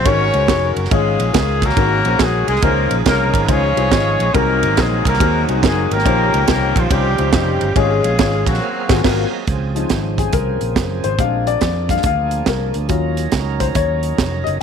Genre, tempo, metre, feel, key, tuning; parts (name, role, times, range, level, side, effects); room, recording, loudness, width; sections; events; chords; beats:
uptempo gospel; 140 BPM; 4/4; swing 66% on 8ths; Db major; A4 = 440 Hz
mellow horn section; melody; 0.0-9.3 s; F3 to Db5; -18 LUFS; left 1 dB; tape echo
warm upright piano; accompaniment; 0.0-14.5 s; Ab2 to F5; -21 LUFS; left 14 dB
fingered electric bass; bass; 0.0-14.6 s; F1 to F2; -20 LUFS; right 1 dB
crisp fusion drum kit; drums; 0.1-14.5 s; crash cymbal, hi-hat, kick drum, ride cymbal, snare drum; -19 LUFS; right 4 dB
overdriven tonewheel organ; sustained chords; 2.6-14.6 s; Db3 to Ab5; -26 LUFS; right 12 dB; slow rotary speaker
light reverb; 1960s-style stereo with parts hard left and right; -14 LUFS; side -7 dB against mid
0.0-9.5 A section; 9.5-14.6 B section
band accent 8.6-9.5; upright piano solo 9.5-14.6
0.1 Ab9sus4; 0.9 Db/Ab; 1.8 Ab9sus4; 2.6 Dbmaj9; 4.3 Ab9; 6.1 Eb13/Bb; 7.8 Db/Ab; 8.6 Ab13; 9.5 Dbmaj7; 11.2 Bb7; 12.9 Ebm7
0.06 0.49 | 0.92 1.35 1.78 2.20 | 2.63 3.06 3.49 3.92 | 4.34 4.77 5.20 5.63 | 6.06 6.48 6.91 7.34 | 7.77 8.19 8.62 9.05 | 9.48 9.90 10.33 10.76 | 11.19 11.62 12.04 12.47 | 12.90 13.33 13.76 14.19